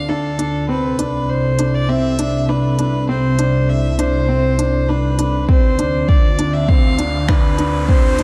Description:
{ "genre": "piano and strings electronica", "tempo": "100 BPM", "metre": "4/4", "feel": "straight", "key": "unclear", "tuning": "A4 = 438 Hz", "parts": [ { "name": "warm violin", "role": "melody", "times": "0.0-8.2 s", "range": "A4 to F5", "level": "-24 LUFS", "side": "equal", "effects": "none" }, { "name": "lush unison pad", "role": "sustained chords", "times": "0.0-8.2 s", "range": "C2 to A4", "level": "-21 LUFS", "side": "equal", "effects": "chorus, sidechain pumping" }, { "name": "warm grand piano", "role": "riff", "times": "0.0-8.2 s", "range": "C4 to D4", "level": "-23 LUFS", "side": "equal", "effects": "none" }, { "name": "organic electronic drum kit", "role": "drums", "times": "0.4-8.2 s", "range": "finger snaps, hi-hat", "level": "-30 LUFS", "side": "equal", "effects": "overdrive, high-pass filter on hats, high-pass filter on snare" }, { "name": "electronic kick drum", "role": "drums", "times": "5.5-8.0 s", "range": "none", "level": "-16 LUFS", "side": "equal", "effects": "overdrive" }, { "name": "riser", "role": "sound effects", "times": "6.2-8.2 s", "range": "none", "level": "-33 LUFS", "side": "equal", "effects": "none" } ], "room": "light reverb, digital ambience", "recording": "dark, warm production", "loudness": "-16 LUFS", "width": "mono", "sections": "0.0-8.2 A section", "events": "build-up 0.0-8.2; riser 6.2-8.2", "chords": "0.0 Dm; 0.7 Cmaj7; 5.5 Dm7" }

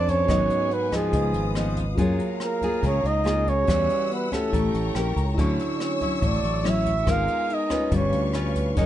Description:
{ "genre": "bossa nova", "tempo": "142 BPM", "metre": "4/4", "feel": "straight", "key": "unclear", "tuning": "A4 = 439 Hz", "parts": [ { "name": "breathy flugelhorn", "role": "melody", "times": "0.0-8.5 s", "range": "Ab4 to F5", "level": "-26 LUFS", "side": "right 3 dB", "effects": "none" }, { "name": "breathy trombone", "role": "second line", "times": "0.0-8.5 s", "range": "Ab3 to F4", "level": "-33 LUFS", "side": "left 3 dB", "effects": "none" }, { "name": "mellow tine electric piano", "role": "accompaniment", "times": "0.0-8.9 s", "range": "Eb4 to C#6", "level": "-33 LUFS", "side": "moving between equal and right 6 dB", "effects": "auto-pan" }, { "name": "nylon-string guitar", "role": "accompaniment", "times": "0.0-8.9 s", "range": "Ab2 to C5", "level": "-28 LUFS", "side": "left 2 dB", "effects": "none" }, { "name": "warm symphonic string section", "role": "sustained chords", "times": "0.0-8.9 s", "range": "Ab4 to E6", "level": "-35 LUFS", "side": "left 4 dB", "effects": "none" }, { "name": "fingered electric bass", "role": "bass", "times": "0.0-8.9 s", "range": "Gb1 to Gb2", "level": "-25 LUFS", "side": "equal", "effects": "none" }, { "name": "jazz brush drum kit", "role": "drums", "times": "0.1-8.9 s", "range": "hi-hat, kick drum, rim click", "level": "-30 LUFS", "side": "equal", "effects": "none" } ], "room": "light reverb", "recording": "nothing above 10.8 kHz", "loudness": "-21 LUFS", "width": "side -12 dB against mid", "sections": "0.0-8.9 A section", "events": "tine electric piano fill 4.7-5.4", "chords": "0.3 Abm7; 1.1 Db9; 2.0 Gbmaj9; 3.7 Emadd9; 4.5 A7b9; 5.4 Dmaj9; 7.1 Abmadd9; 7.9 G7#11" }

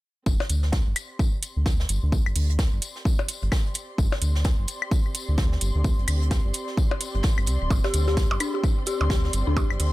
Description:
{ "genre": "minimal techno", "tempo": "129 BPM", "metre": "4/4", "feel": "swing 60% on 16ths", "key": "unclear", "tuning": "A4 = 440 Hz", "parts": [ { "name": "round analog bass", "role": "bass", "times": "0.3-9.9 s", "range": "D1 to D2", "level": "-24 LUFS", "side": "equal", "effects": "sidechain pumping" }, { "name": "electronic kick drum", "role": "drums", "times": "0.3-9.7 s", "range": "none", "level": "-23 LUFS", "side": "equal", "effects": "none" }, { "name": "jazz brush drum kit", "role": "drums", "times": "0.3-9.9 s", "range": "hi-hat, snare drum, tambourine", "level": "-37 LUFS", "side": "left 1 dB", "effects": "sidechain pumping on hats, high-pass filter on hats, high-pass filter on snare, sidechain pumping on perc, high-pass filter on perc, high-pass filter on room" }, { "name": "dark studio string section", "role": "texture", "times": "0.3-9.9 s", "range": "C4 to C6", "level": "-36 LUFS", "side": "equal", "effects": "sidechain pumping" }, { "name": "percussion blips and claves", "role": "percussion", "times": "0.4-9.8 s", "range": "none", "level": "-31 LUFS", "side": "left 4 dB", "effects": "overdrive, ping-pong delay" }, { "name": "electronic hi-hat", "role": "drums", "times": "0.5-9.9 s", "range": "none", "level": "-28 LUFS", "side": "right 3 dB", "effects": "none" }, { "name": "dark detuned synth bell", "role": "riff", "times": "7.8-9.6 s", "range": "D4 to G4", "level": "-29 LUFS", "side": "left 3 dB", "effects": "chorus, sidechain pumping, digital delay" } ], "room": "small room ambience", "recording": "none", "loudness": "-22 LUFS", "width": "side -18 dB against mid", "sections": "0.3-9.9 A section", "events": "fade-in on string section 0.3-9.9; filter sweep on analog synth bass 0.3-9.9", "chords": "0.3 Gsus4" }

